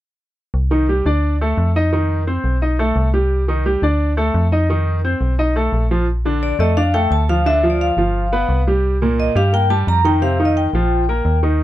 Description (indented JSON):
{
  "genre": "Afro-Cuban jazz",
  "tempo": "174 BPM",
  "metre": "4/4",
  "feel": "straight",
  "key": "Bb major",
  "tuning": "A4 = 440 Hz",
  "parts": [
    { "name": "metallic FM bass", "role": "bass", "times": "0.5-11.6 s", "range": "G1 to G2", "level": "-18 LUFS", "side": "equal", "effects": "none" },
    { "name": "clear upright piano", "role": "accompaniment", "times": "0.7-11.6 s", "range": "Bb2 to Eb5", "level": "-19 LUFS", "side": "right 1 dB", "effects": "none" },
    { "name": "vibraphone with medium hard mallets", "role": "melody", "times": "6.4-11.4 s", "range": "D5 to Bb5", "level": "-20 LUFS", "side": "left 1 dB", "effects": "none" }
  ],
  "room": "light reverb",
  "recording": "dry, close 1970s-style studio recording",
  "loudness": "-15 LUFS",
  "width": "side -14 dB against mid",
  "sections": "0.5-6.1 A section; 6.1-11.6 B section",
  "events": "none",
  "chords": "0.5 Cmadd9; 1.2 Dm; 1.9 F5; 2.6 B7; 3.3 Cmadd9; 4.0 Dm; 4.7 F5; 5.4 B7; 6.1 Bbmaj7; 7.5 Dm; 8.1 G7; 8.8 Cm7; 10.2 F9sus4; 10.9 Bb5",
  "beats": "| 0.54 0.88 1.23 1.58 | 1.92 2.27 2.62 2.96 | 3.31 3.65 4.00 4.35 | 4.69 5.04 5.38 5.73 | 6.08 6.42 6.77 7.11 | 7.46 7.80 8.15 8.49 | 8.84 9.19 9.53 9.88 | 10.22 10.56 10.91 11.26 | 11.60"
}